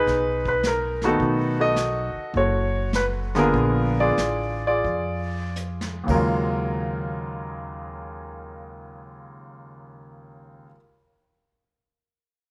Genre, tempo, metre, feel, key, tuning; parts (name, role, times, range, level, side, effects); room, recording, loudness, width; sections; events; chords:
jazz piano trio; 75-107 BPM; 4/4; swing 68% on 8ths; Eb minor; A4 = 439 Hz
clear grand piano; melody; 0.0-10.8 s; Eb2 to D#5; -26 LUFS; equal
upright bass; bass; 0.0-10.6 s; F#1 to F2; -31 LUFS; equal
vintage brush drum kit; drums; 0.1-6.2 s; brushed snare drum, crash cymbal, hi-hat, kick drum, snare drum; -37 LUFS; equal
moderate spring reverb, RT60 1.9 s, small room reverb; -24 LUFS; mono
0.0-6.3 A section; 6.3-9.5 B section
slowing down 1.2-6.3; drum fill 5.6-6.3
0.0 Fm7b5 (rootless); 1.2 B7; 3.5 Bb7b9; 5.9 Ebm11